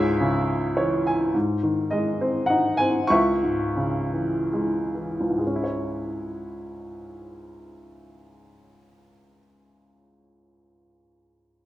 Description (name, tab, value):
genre	classical, lyrical solo piano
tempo	62-110 BPM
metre	3/4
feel	rubato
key	C# minor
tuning	A4 = 440 Hz
part	clear upright piano	solo	0.0-11.7 s	C#2 to C#6	-22 LUFS	equal	none
room	moderate recital hall reverb, RT60 1.3 s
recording	minimal, uncompressed stereo recording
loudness	-21 LUFS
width	side -14 dB against mid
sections	0.0-1.3 A section; 1.3-5.4 B section; 5.4-11.1 C section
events	upright piano fill 0.5-1.3; slowing down 1.3-5.4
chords	0.0 C#m; 1.3 G#; 3.1 C#m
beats	0.21 0.77 | 1.35 1.92 2.50 | 3.11 3.77 4.53 | 5.42 6.38 7.30 | 8.22 9.16 10.13